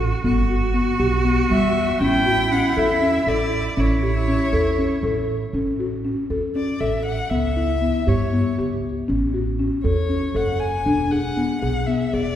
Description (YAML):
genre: contemporary instrumental, chamber music in an uneven meter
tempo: 237 BPM (eighths)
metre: 7/8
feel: straight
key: A mixolydian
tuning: A4 = 439 Hz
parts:
  - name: bright cello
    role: second line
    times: 0.0-5.2 s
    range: E4 to F#4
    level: -25 LUFS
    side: right 4 dB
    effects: none
  - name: buzzing marimba with medium mallets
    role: arpeggios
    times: 0.0-12.4 s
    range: G3 to A4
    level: -22 LUFS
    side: left 2 dB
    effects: none
  - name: upright bass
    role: bass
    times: 0.0-12.4 s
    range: E1 to G2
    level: -24 LUFS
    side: right 1 dB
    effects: none
  - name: rich violin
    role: melody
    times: 1.5-12.4 s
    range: C#5 to G#5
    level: -25 LUFS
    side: left 2 dB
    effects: none
room: wet concert hall reverb, RT60 2.4 s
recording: heard from further back in the room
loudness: -18 LUFS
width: side -10 dB against mid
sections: 0.0-5.5 A section; 5.5-12.4 A section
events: none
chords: 0.2 Emadd9/G; 2.0 A; 7.3 C#m7b5; 9.1 A6; 10.9 E7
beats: | 0.24 0.49 0.74 0.99 1.25 1.50 1.75 | 2.00 2.25 2.51 2.76 3.01 3.27 3.52 | 3.77 4.02 4.28 4.53 4.78 5.03 5.29 | 5.54 5.79 6.05 6.30 6.55 6.80 7.06 | 7.31 7.56 7.82 8.07 8.32 8.58 8.83 | 9.09 9.34 9.59 9.85 10.10 10.35 10.61 | 10.86 11.11 11.37 11.62 11.88 12.13